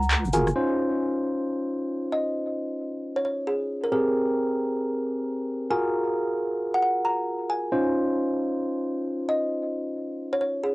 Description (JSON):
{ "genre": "UK garage, two-step garage", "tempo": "134 BPM", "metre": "4/4", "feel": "swing 63% on 16ths", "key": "Db major", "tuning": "A4 = 440 Hz", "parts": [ { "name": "deep soft wobble bass", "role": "bass", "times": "0.0-0.5 s", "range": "Gb1 to Db2", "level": "-24 LUFS", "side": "equal", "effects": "chorus" }, { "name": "punchy analog drum machine", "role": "drums", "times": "0.0-0.5 s", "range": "cabasa, handclaps, hi-hat, rim click", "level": "-25 LUFS", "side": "equal", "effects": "low-pass filter on snare, cassette tape, low-pass filter on hats, low-pass filter on perc" }, { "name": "kalimba", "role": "melody", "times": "0.3-10.7 s", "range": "Ab4 to Bb5", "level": "-28 LUFS", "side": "equal", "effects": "cassette tape, analog delay" }, { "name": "bright tine electric piano", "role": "stabs", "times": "0.3-10.7 s", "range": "C4 to C5", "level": "-26 LUFS", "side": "equal", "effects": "cassette tape, analog delay" } ], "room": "moderate booth ambience, RT60 0.2 s", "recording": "home recording on cassette", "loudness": "-24 LUFS", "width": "side -21 dB against mid", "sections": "0.6-10.7 A section", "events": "band accent 0.1", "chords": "0.0 Gbmaj9; 0.6 Dbmaj9; 3.9 Abmaj9; 5.7 Gbmaj9; 7.7 Dbmaj9", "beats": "0.11 | 0.56 1.01 1.45 1.90 | 2.35 2.80 3.25 3.69 | 4.14 4.59 5.04 5.48 | 5.93 6.38 6.83 7.28 | 7.72 8.17 8.62 9.07 | 9.51 9.96 10.41" }